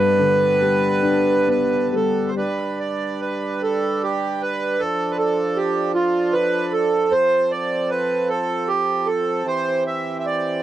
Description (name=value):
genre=celtic folk, Celtic slow air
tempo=76 BPM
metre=3/4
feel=uneven beats, rubato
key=G mixolydian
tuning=A4 = 442 Hz
part: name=accordion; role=melody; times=0.0-10.6 s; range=F4 to E5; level=-20 LUFS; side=right 3 dB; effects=none
part: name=dark upright piano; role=accompaniment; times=0.0-2.4 s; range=G2 to D4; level=-21 LUFS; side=left 6 dB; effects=none
part: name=hand-pumped harmonium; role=sustained chords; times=0.0-10.6 s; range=E3 to B4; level=-25 LUFS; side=right 1 dB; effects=none
room=little or no reverb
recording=dry, close 1970s-style studio recording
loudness=-18 LUFS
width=side -12 dB against mid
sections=0.0-2.3 A section; 2.3-10.6 B section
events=none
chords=0.0 Gadd9; 2.3 G; 4.8 Dm/F; 7.1 F; 9.5 C